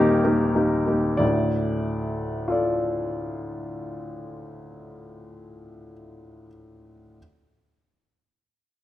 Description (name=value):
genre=neoclassical minimalist piano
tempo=94 BPM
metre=3/4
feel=rubato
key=D minor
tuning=A4 = 436 Hz
part: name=warm baby grand piano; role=solo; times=0.0-7.2 s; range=Eb1 to D5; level=-22 LUFS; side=left 1 dB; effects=none
room=moderate recital hall reverb, RT60 1.6 s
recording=minimal, uncompressed stereo recording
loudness=-22 LUFS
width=side -13 dB against mid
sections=0.0-1.2 A section; 1.2-5.0 B section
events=slowing down 0.0-1.2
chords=0.0 Eb; 1.2 Dm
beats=0.56 | 1.21 1.85 2.48 | 3.12 3.76 4.39